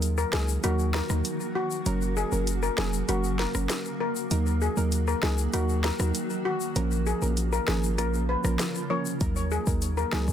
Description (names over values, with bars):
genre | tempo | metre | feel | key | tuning
dancehall | 98 BPM | 4/4 | straight | Eb minor | A4 = 442 Hz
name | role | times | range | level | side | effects
soft round pluck | accompaniment | 0.0-10.3 s | F3 to Bb4 | -32 LUFS | right 4 dB | chorus
granular cloud pad | sustained chords | 0.0-10.3 s | Db3 to Gb4 | -34 LUFS | left 1 dB | built-in reverb, sidechain pumping
warm 808-style bass | bass | 0.0-10.3 s | F1 to Eb2 | -27 LUFS | equal | none
afro-pop drum kit | drums | 0.0-10.3 s | hi-hat, kick drum, rim click, snare drum | -31 LUFS | equal | none
tube shaker | percussion | 0.0-10.3 s | none | -38 LUFS | left 9 dB | none
steel pan | melody | 0.2-10.2 s | Gb4 to Db5 | -31 LUFS | left 4 dB | tape echo
room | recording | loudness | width
little or no reverb | dense, heavily limited modern master | -24 LUFS | side -10 dB against mid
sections
0.0-10.3 A section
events
break 0.0-9.2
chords
0.0 Ebm; 1.9 Gb; 4.3 Ebm; 6.8 Bbm; 9.2 Ebm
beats
0.03 0.64 1.25 | 1.86 2.47 3.09 3.70 | 4.31 4.92 5.54 6.15 | 6.76 7.37 7.98 8.60 | 9.21 9.82